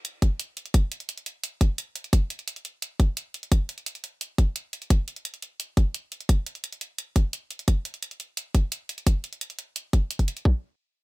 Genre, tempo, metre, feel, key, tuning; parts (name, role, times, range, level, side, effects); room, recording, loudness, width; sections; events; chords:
dark technical drum and bass; 173 BPM; 4/4; straight
electronic hi-hat; drums; 0.0-10.4 s; -33 LUFS; right 2 dB
electronic kick drum; drums; 0.2-10.5 s; -20 LUFS; equal
little or no reverb; -25 LUFS; side -21 dB against mid
0.0-10.5 A section